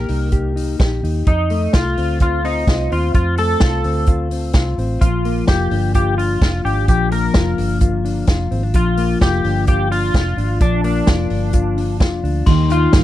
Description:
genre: jangly indie pop.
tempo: 128 BPM.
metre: 4/4.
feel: straight.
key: unclear.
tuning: A4 = 440 Hz.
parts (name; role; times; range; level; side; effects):
electric guitar through a small old amp; melody; 0.0-13.0 s; D4 to Bb4; -22 LUFS; equal; analog chorus, slapback echo.
mellow electric guitar; arpeggios; 0.0-13.0 s; Eb3 to G4; -21 LUFS; left 5 dB; slapback echo.
vintage muted fingered electric bass; bass; 0.0-13.0 s; F1 to G2; -20 LUFS; right 1 dB; none.
vintage drum kit; drums; 0.1-13.0 s; crash cymbal, hi-hat, kick drum, snare drum; -15 LUFS; equal; none.
glockenspiel with hard plastic mallets; second line; 12.5-13.0 s; C6; -25 LUFS; left 9 dB; none.
picked steel-string acoustic guitar; accompaniment; 12.5-13.0 s; Eb3 to Eb4; -20 LUFS; right 10 dB; none.
room: little or no reverb.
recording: dry, close 1970s-style studio recording.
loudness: -14 LUFS.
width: side -13 dB against mid.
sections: 0.0-12.5 A section.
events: none.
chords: 0.0 Eb; 1.3 F7; 5.0 Bb; 12.5 Eb.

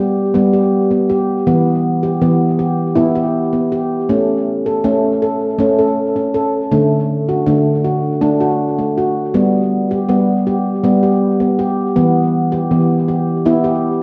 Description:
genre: world meditative, meditative tuned percussion.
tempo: 160 BPM (eighths).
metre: 7/8.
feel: straight.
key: G lydian.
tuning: A4 = 439 Hz.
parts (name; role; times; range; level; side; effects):
handpan; solo; 0.0-14.0 s; D3 to A4; -15 LUFS; equal; diffuse ambient delay.
room: wet echo chamber reverb, RT60 1.9 s.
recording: worn, warbling old tape, cassette tape, warbly pitch drift.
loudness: -15 LUFS.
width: mono.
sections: 0.0-14.0 A section.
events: none.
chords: 0.0 G; 1.5 Em; 4.1 A; 6.7 D; 9.3 G; 12.0 Em.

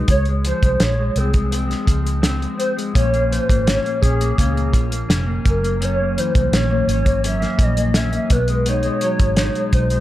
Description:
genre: indie pop, bedroom pop.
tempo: 84 BPM.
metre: 4/4.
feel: straight.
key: Db major.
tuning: A4 = 436 Hz.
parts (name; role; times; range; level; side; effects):
mellow electric guitar; accompaniment; 0.0-10.0 s; Gb2 to Eb4; -23 LUFS; left 2 dB; lush chorus, warbly pitch drift.
warbly nostalgic lead; melody; 0.1-10.0 s; Ab4 to Fb5; -22 LUFS; equal; ensemble chorus, slapback echo.
vintage muted fingered electric bass; bass; 0.1-10.0 s; F1 to Db2; -20 LUFS; equal; none.
cloth-damped thuddy drum kit; drums; 0.1-10.0 s; hi-hat, kick drum, snare drum; -19 LUFS; equal; none.
room: studio reverb.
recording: none.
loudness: -16 LUFS.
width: side -14 dB against mid.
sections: 0.0-10.0 A section.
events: none.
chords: 0.1 Dbmaj7; 2.9 Bbm; 5.4 Gb7; 8.3 Cb6.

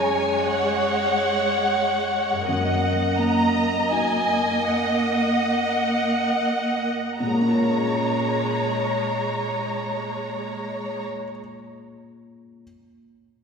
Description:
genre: cinematic.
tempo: 64-90 BPM.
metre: 3/4.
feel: rubato.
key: Bb minor.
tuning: A4 = 440 Hz.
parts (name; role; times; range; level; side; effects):
dark symphonic violin section; melody; 0.0-11.0 s; Gb5 to Bb5; -25 LUFS; left 1 dB; none.
felt-muted upright piano; accompaniment; 0.0-12.6 s; Gb2 to Db5; -27 LUFS; left 1 dB; none.
rich symphonic viola section; accompaniment; 0.0-11.0 s; Ab3 to Eb5; -24 LUFS; right 1 dB; none.
concert harp; arpeggios; 0.0-11.4 s; Gb2 to Db5; -34 LUFS; left 1 dB; none.
room: wet concert hall reverb, RT60 2.3 s.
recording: recorded in a church or concert hall.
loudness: -20 LUFS.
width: side -6 dB against mid.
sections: 0.0-7.2 A section; 7.2-12.6 B section.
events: slowing down 1.5-7.2.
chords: 0.0 Gbsus2; 2.5 Ebm/Gb; 7.2 Bbm7.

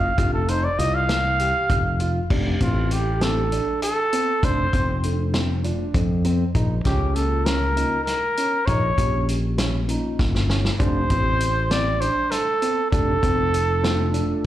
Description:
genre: progressive instrumental, band music in an uneven meter.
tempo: 198 BPM (eighths).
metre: 7/8.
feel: straight.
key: F mixolydian.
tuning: A4 = 440 Hz.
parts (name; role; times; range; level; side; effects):
mellow trumpet; melody; 0.0-14.5 s; F4 to F5; -23 LUFS; right 1 dB; slapback echo, tape echo.
dark grand piano; arpeggios; 0.0-14.5 s; C4 to G4; -30 LUFS; right 2 dB; slapback echo.
fingered electric bass; bass; 0.0-14.2 s; F1 to F2; -23 LUFS; equal; none.
mellow tine electric piano; accompaniment; 0.2-14.5 s; A3 to A4; -31 LUFS; left 2 dB; medium stereo tremolo, slapback echo.
vintage drum kit; drums; 0.2-14.3 s; crash cymbal, hi-hat, kick drum, snare drum; -26 LUFS; equal; none.
room: small room ambience.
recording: live gig heard through the venue's PA, club reverb.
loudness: -19 LUFS.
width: side -13 dB against mid.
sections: 0.0-2.3 A section; 2.3-14.5 B section.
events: trumpet solo 0.0-2.3; drum fill 10.2-10.8.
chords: 0.2 Fsus2; 2.3 F; 6.5 Bbm; 10.8 F.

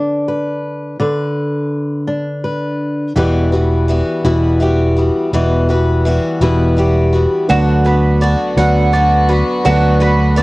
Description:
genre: folk.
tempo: 55 BPM (dotted quarters).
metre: 6/8.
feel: straight.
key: E minor.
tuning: A4 = 438 Hz.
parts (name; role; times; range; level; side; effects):
fingerpicked steel-string acoustic guitar; accompaniment; 0.0-7.5 s; D3 to B4; -17 LUFS; left 1 dB; cassette tape.
picked swing-style acoustic guitar; accompaniment; 3.2-10.4 s; E2 to F#4; -18 LUFS; left 2 dB; cassette tape.
fingered electric bass; bass; 3.2-10.4 s; E1 to D2; -14 LUFS; equal; none.
felt-muted upright piano; accompaniment; 7.5-10.4 s; D2 to D5; -20 LUFS; right 2 dB; cassette tape.
rich chamber string section; sustained chords; 7.5-10.4 s; D3 to F#4; -23 LUFS; left 1 dB; cassette tape.
mandolin; arpeggios; 7.5-10.4 s; F#4 to F#5; -16 LUFS; right 2 dB; cassette tape.
room: light reverb.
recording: home recording on cassette.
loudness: -12 LUFS.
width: side -21 dB against mid.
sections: 0.0-3.2 A section; 3.2-10.4 B section.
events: build-up 3.2-10.4.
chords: 0.0 Bm/D; 3.2 Emadd9; 7.5 Bm/D.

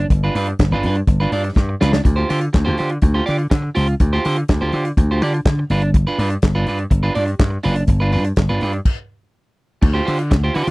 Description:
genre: disco.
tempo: 124 BPM.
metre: 4/4.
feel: straight.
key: D dorian.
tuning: A4 = 439 Hz.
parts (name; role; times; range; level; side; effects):
electric guitar at the edge of break-up; accompaniment; 0.0-10.7 s; D4 to D5; -21 LUFS; right 2 dB; none.
slap bass; bass; 0.0-10.7 s; F#1 to D3; -18 LUFS; equal; none.
warm soul drum kit; drums; 0.1-10.7 s; crash cymbal, handclaps, hi-hat, kick drum, snare drum; -16 LUFS; equal; none.
room: little or no reverb.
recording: none.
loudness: -15 LUFS.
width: side -22 dB against mid.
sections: 0.0-9.8 A section.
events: drum fill 1.6-2.1; stop 8.9-9.8.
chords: 0.0 G7; 2.1 Dm7; 5.7 G7; 9.8 Dm7.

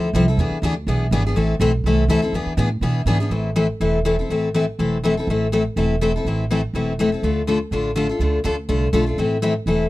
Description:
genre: acoustic string swing (jazz manouche).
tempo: 246 BPM.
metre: 4/4.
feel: swing 55% on 8ths.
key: A minor.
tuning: A4 = 436 Hz.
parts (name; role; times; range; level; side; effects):
picked steel-string acoustic guitar; accompaniment; 0.0-9.9 s; D3 to A4; -19 LUFS; left 2 dB; none.
upright bass; bass; 0.0-9.9 s; E1 to B2; -22 LUFS; right 1 dB; none.
room: little or no reverb.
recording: dry, close 1970s-style studio recording.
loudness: -18 LUFS.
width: side -17 dB against mid.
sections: 0.0-3.3 A section; 3.3-9.9 B section.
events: none.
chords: 0.4 E7; 1.4 Am; 2.3 E7; 3.3 Am; 7.2 Dm; 9.2 Am.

